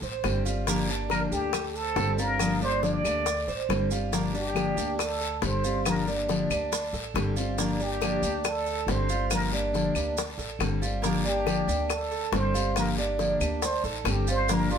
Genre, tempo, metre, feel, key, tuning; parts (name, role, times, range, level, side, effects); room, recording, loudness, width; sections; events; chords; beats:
latin, Cuban son and guajira; 139 BPM; 4/4; straight; G minor; A4 = 442 Hz
Cuban tres; arpeggios; 0.0-14.8 s; Bb3 to C5; -32 LUFS; right 4 dB
upright bass; bass; 0.0-14.8 s; G1 to D2; -32 LUFS; equal
bongos; percussion; 0.0-14.7 s; -34 LUFS; left 6 dB
maracas; percussion; 0.0-14.8 s; -37 LUFS; right 6 dB
picked steel-string acoustic guitar; accompaniment; 0.2-14.8 s; D3 to G4; -30 LUFS; left 2 dB
claves; percussion; 0.2-14.3 s; -37 LUFS; left 5 dB
guiro; percussion; 0.2-14.8 s; -39 LUFS; left 4 dB
trumpet with plunger mute; melody; 1.1-14.8 s; Eb4 to D5; -30 LUFS; right 1 dB
moderate studio reverb, RT60 0.8 s; band playing live in one room; -25 LUFS; side -7 dB against mid
0.0-4.1 A section; 4.1-14.8 B section
muted trumpet solo 4.1-14.8
0.0 D7sus4; 0.7 Gm7; 1.5 D7sus4; 2.4 Gm7; 3.3 D7sus4; 4.1 Gm7; 5.0 D7sus4; 5.9 Gm7; 6.7 D7sus4; 7.6 Gm7; 8.4 D7sus4; 9.3 Gm7; 10.2 D7sus4; 11.0 Gm7; 11.9 D7sus4; 12.8 Gm7; 13.6 D7sus4
0.24 | 0.67 1.11 1.54 1.97 | 2.40 2.83 3.27 3.70 | 4.13 4.56 5.00 5.43 | 5.86 6.29 6.72 7.15 | 7.58 8.01 8.45 8.88 | 9.31 9.74 10.17 10.60 | 11.03 11.46 11.89 12.33 | 12.76 13.19 13.62 14.05 | 14.49